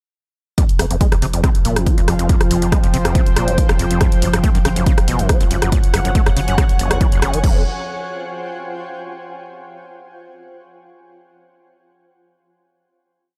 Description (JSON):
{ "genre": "driving peak-time techno", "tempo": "140 BPM", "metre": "4/4", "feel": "straight", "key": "F minor", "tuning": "A4 = 439 Hz", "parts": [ { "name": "overdriven acid bass", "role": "riff", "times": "0.6-7.6 s", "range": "Gb1 to A3", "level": "-25 LUFS", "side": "equal", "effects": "analog chorus, sidechain pumping, analog delay" }, { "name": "analog drone", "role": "drone", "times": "1.3-7.5 s", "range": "F3", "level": "-28 LUFS", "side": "equal", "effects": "chorus, sidechain pumping" }, { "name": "electronic kick drum", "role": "drums", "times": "0.6-7.5 s", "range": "none", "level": "-18 LUFS", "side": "equal", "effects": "none" }, { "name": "techno drum kit", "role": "drums", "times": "0.6-7.5 s", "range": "crash cymbal, hi-hat, rim click", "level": "-25 LUFS", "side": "equal", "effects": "sidechain pumping on hats, sidechain pumping on cymbals" }, { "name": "granular cloud pad", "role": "texture", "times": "1.7-9.1 s", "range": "F4 to Ab5", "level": "-30 LUFS", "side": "equal", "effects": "built-in reverb, sidechain pumping" }, { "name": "saturated sub bass", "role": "bass", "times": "0.7-7.6 s", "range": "F1 to Gb1", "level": "-24 LUFS", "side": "equal", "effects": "overdrive, sidechain pumping, low-pass filter" } ], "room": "digital ambience", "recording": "dry, gritty hardware recording", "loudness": "-16 LUFS", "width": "mono", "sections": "0.6-7.4 groove; 7.4-9.2 final chord", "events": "none", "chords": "0.6 F5; 4.0 Gb5; 7.4 F5" }